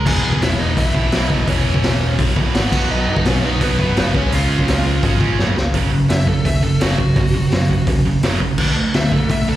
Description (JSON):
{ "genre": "punk rock", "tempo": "169 BPM", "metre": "4/4", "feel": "straight", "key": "unclear", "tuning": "A4 = 440 Hz", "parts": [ { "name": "smooth overdriven lead guitar", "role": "melody", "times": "0.0-9.6 s", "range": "B3 to G#5", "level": "-24 LUFS", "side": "left 1 dB", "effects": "slapback echo, ping-pong delay" }, { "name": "distorted electric guitar", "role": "riff", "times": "0.0-9.6 s", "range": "E2 to D4", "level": "-21 LUFS", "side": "right 8 dB", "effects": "distortion, slapback echo" }, { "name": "sludgy distorted guitar", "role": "riff", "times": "0.0-9.6 s", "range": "E2 to D4", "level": "-24 LUFS", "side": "left 6 dB", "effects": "overdrive" }, { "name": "overdriven picked electric bass", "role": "bass", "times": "0.0-9.6 s", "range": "E1 to D3", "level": "-20 LUFS", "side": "equal", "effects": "none" }, { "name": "raw garage drum kit", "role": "drums", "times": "0.1-9.4 s", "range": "crash cymbal, hi-hat, kick drum, snare drum", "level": "-18 LUFS", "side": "equal", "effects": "none" } ], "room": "little or no reverb", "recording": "live gig heard through the venue's PA, recital hall reverb", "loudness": "-14 LUFS", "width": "side -13 dB against mid", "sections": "0.0-5.7 A section; 5.7-9.6 B section", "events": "drum fill 5.4-5.7; lead electric guitar solo 5.7-9.6", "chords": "0.1 E; 2.7 B; 4.1 C#; 5.7 F#5; 8.6 D5", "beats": "| 0.06 0.41 0.77 1.13 | 1.48 1.84 2.19 2.55 | 2.90 3.26 3.61 3.97 | 4.32 4.68 5.04 5.39 | 5.75 6.10 6.46 6.81 | 7.17 7.52 7.88 8.23 | 8.59 8.94 9.30" }